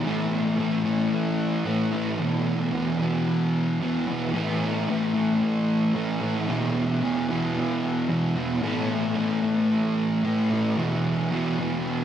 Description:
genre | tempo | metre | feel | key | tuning
rock | 112 BPM | 4/4 | straight | unclear | A4 = 440 Hz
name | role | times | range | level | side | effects
fuzz guitar | solo | 0.0-12.0 s | E2 to A3 | -22 LUFS | equal | distortion, wide subtle chorus, tape echo
room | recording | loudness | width
wet huge ambient reverb, RT60 3.9 s | dreamy mix soaked in reverb | -22 LUFS | side -10 dB against mid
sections
0.0-12.0 A section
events
none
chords
0.1 A5; 2.2 E5; 4.3 A5; 6.5 E5; 8.6 A5; 10.8 E5

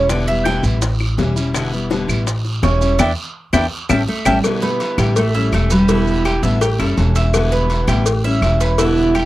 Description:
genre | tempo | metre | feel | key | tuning
latin, Cuban son and guajira | 166 BPM | 4/4 | straight | unclear | A4 = 440 Hz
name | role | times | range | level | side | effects
picked steel-string acoustic guitar | accompaniment | 0.0-9.3 s | B2 to E4 | -21 LUFS | left 3 dB | none
Cuban tres | arpeggios | 0.0-9.3 s | E4 to A5 | -19 LUFS | right 3 dB | none
upright bass | bass | 0.0-9.3 s | E1 to E2 | -18 LUFS | equal | none
bongos and cowbell | percussion | 0.1-9.3 s | none | -23 LUFS | left 4 dB | none
guiro | percussion | 0.1-9.3 s | none | -31 LUFS | right 4 dB | none
maracas | percussion | 0.1-9.3 s | none | -29 LUFS | right 7 dB | none
claves | percussion | 0.5-9.3 s | none | -27 LUFS | left 4 dB | none
nylon-string guitar | melody | 4.1-6.4 s | G3 to B3 | -20 LUFS | equal | slapback echo
room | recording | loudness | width
little or no reverb | dry, close 1970s-style studio recording | -14 LUFS | side -16 dB against mid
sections
0.0-4.4 A section; 4.4-9.3 B section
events
Cuban tres solo 0.0-4.4; band accent 3.0-4.4; drum fill 3.4-4.4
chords
0.1 Em7; 0.8 A7; 1.5 Em7; 2.3 A7; 3.0 Em7; 3.7 A7; 4.4 Em7; 5.2 A7; 5.9 Em7; 6.6 A7; 7.3 Em7; 8.1 A7

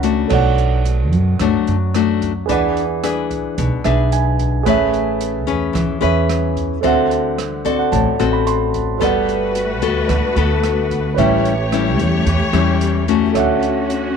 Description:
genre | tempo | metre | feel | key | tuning
bossa nova | 110 BPM | 4/4 | straight | B minor | A4 = 441 Hz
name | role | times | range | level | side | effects
nylon-string guitar | accompaniment | 0.0-14.2 s | A2 to B4 | -19 LUFS | left 12 dB | none
warm grand piano | accompaniment | 0.0-14.2 s | G#4 to C6 | -21 LUFS | right 14 dB | none
upright bass | bass | 0.0-14.2 s | G1 to F#2 | -20 LUFS | right 1 dB | none
open jazz drum kit | drums | 0.0-14.0 s | crash cymbal, hi-hat, kick drum, rim click | -28 LUFS | right 6 dB | none
warm symphonic string section | sustained chords | 9.0-14.2 s | A3 to C#5 | -22 LUFS | left 1 dB | none
room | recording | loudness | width
light reverb, small room ambience | 1960s-style stereo with parts hard left and right | -14 LUFS | side -6 dB against mid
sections
0.3-14.2 A section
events
grand piano fill 0.0-0.3, 3.6-4.7, 7.4-9.0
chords
0.3 Bm7; 2.5 E7; 4.7 Amaj9; 6.8 D7; 9.0 Gmaj9; 11.2 A7; 13.4 Dmaj7

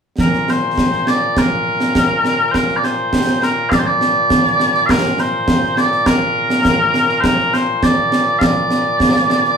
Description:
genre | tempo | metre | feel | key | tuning
scottish traditional, Scottish pipe music | 102 BPM | 4/4 | straight | Bb major | A4 = 440 Hz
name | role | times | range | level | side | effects
mellow small bagpipes | melody | 0.2-9.6 s | Bb2 to F5 | -15 LUFS | equal | none
concert snare drum and concert bass drum | drums | 0.2-9.5 s | none | -17 LUFS | right 1 dB | none
room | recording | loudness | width
wet studio reverb, RT60 0.6 s | band playing live in one room | -13 LUFS | side -6 dB against mid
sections
0.2-9.6 A section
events
none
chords
none

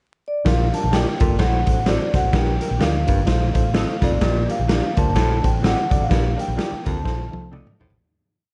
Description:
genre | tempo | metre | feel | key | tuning
uptempo 1960s-style soul | 127 BPM | 4/4 | swing 59% on 8ths | Bb major | A4 = 440 Hz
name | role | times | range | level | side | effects
vibraphone with soft mallets | melody | 0.3-7.5 s | D5 to A5 | -28 LUFS | equal | none
barky reed electric piano | accompaniment | 0.4-7.9 s | D4 to D5 | -32 LUFS | equal | overdrive, fast tremolo
tonewheel organ | sustained chords | 0.4-8.0 s | D3 to G4 | -37 LUFS | equal | none
mellow baritone saxophone | riff | 0.5-8.0 s | F2 to Bb2 | -32 LUFS | equal | none
vintage muted fingered electric bass | bass | 0.5-8.0 s | G1 to D2 | -25 LUFS | equal | none
raw garage drum kit | drums | 0.5-8.0 s | hi-hat, kick drum, snare drum, toms | -23 LUFS | equal | none
electric guitar through a small old amp | stabs | 0.9-7.7 s | Bb3 to Eb5 | -32 LUFS | equal | none
room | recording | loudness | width
light reverb, small room ambience | dark, warm production, vinyl crackle, nothing above 10.9 kHz | -20 LUFS | mono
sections
0.0-0.5 pickup bar; 0.5-8.0 verse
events
fade-out 6.1-8.0; drum fill 7.1-8.0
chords
0.5 Bb6; 1.4 D7; 2.3 Gm7/Bb; 3.3 F7; 4.2 Bb6; 5.2 D7; 6.1 Gm7/Bb; 7.1 F7/Bb

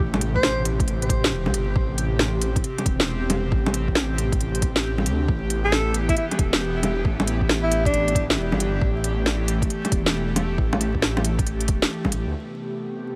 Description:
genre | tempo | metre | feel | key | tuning
future garage | 136 BPM | 4/4 | swing 65% on 16ths | A minor | A4 = 440 Hz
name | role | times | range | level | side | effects
airy breathy pad | sustained chords | 0.0-13.2 s | B2 to G4 | -31 LUFS | equal | chorus, sidechain pumping
dark detuned saw bass | bass | 0.0-12.3 s | E1 to D2 | -28 LUFS | equal | sidechain pumping
organic electronic drum kit | drums | 0.1-12.2 s | bongos, hi-hat, snare drum | -26 LUFS | equal | overdrive
breathy alto saxophone | melody | 0.4-0.7, 5.6-8.3 s | D4 to C5 | -30 LUFS | equal | delay
electronic kick drum | drums | 0.4-12.1 s | none | -26 LUFS | equal | overdrive
room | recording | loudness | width
light reverb | vinyl crackle | -23 LUFS | mono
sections
0.0-12.3 A section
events
none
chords
0.0 Am9; 5.3 Em; 12.3 Am9

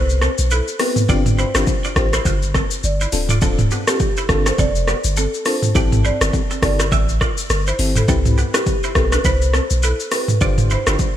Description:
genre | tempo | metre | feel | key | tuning
afrobeats | 103 BPM | 4/4 | swing 58% on 16ths | C major | A4 = 440 Hz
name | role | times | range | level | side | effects
marimba with medium mallets | melody | 0.0-10.9 s | G4 to D5 | -25 LUFS | right 1 dB | ping-pong delay
clean electric guitar | riff | 0.0-10.9 s | B3 to E5 | -26 LUFS | right 5 dB | analog chorus, ping-pong delay
punchy sub bass | bass | 0.0-11.0 s | D1 to C2 | -19 LUFS | equal | none
afro-pop drum kit | drums | 0.1-11.2 s | hi-hat, kick drum, rim click, shaker, toms | -18 LUFS | equal | overdrive
FM electric piano with tremolo | accompaniment | 0.8-11.1 s | B3 to C5 | -26 LUFS | left 4 dB | phaser
room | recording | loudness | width
light reverb | bright 1980s-style digital production | -15 LUFS | side -11 dB against mid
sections
0.0-11.2 A section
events
none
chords
0.0 Cmaj7; 1.1 G7sus4; 3.1 Dm7; 5.8 Am7; 8.1 Cmaj7; 10.4 G7sus4

